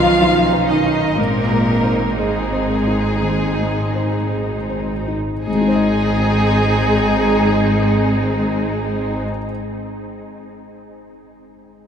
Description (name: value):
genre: cinematic, emotional film score for orchestra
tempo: 51-65 BPM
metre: 4/4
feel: rubato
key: Ab major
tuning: A4 = 441 Hz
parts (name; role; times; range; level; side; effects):
- muted chamber violin section; melody; 0.0-9.2 s; Ab4 to F5; -23 LUFS; left 1 dB; none
- muted symphonic violin section; second line; 0.0-9.2 s; C4 to D#4; -23 LUFS; right 1 dB; none
- felt-muted upright piano; accompaniment; 0.0-11.9 s; F#2 to Eb5; -23 LUFS; left 3 dB; none
- muted symphonic viola section; accompaniment; 0.0-9.2 s; Ab3 to Ab4; -23 LUFS; right 3 dB; none
- muted symphonic cello section; bass; 0.0-9.2 s; Ab2 to Ab3; -23 LUFS; left 1 dB; none
- muted symphonic double bass section; bass; 0.0-9.2 s; Ab1 to B1; -23 LUFS; equal; none
room: wet cathedral reverb, RT60 6.7 s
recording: in a vast, echoing space, faint mains hum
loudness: -15 LUFS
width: side -8 dB against mid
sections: 0.0-5.5 A section; 5.5-10.1 B section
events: slowing down 0.0-5.5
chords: 0.0 B; 1.2 Ab